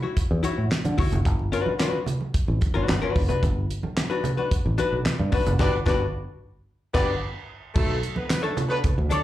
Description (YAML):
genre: funk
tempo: 111 BPM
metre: 4/4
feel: straight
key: unclear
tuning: A4 = 440 Hz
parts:
  - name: archtop guitar, miked and amplified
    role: accompaniment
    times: 0.0-9.2 s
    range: D4 to C#5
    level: -27 LUFS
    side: left 5 dB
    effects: slapback echo
  - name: congas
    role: percussion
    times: 0.0-9.2 s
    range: none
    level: -30 LUFS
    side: right 3 dB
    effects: slapback echo
  - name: damped 70s drum kit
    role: drums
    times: 0.2-9.2 s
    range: crash cymbal, handclaps, hi-hat, kick drum, snare drum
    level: -25 LUFS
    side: equal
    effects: none
  - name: fingered electric bass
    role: bass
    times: 0.3-9.1 s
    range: F#1 to D3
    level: -24 LUFS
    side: equal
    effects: none
  - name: mellow horn section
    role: second line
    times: 5.6-9.2 s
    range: A3 to D5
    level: -29 LUFS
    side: right 2 dB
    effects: slapback echo
  - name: tambourine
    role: percussion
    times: 8.3-8.4 s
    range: none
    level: -45 LUFS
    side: left 6 dB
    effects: none
room: light reverb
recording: live gig heard through the venue's PA, club reverb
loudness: -22 LUFS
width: side -14 dB against mid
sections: 0.0-7.8 A section; 7.8-9.2 B section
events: band accent 5.6-7.8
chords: 0.0 Dmaj9 (rootless); 1.3 Gmaj7; 7.8 Bm9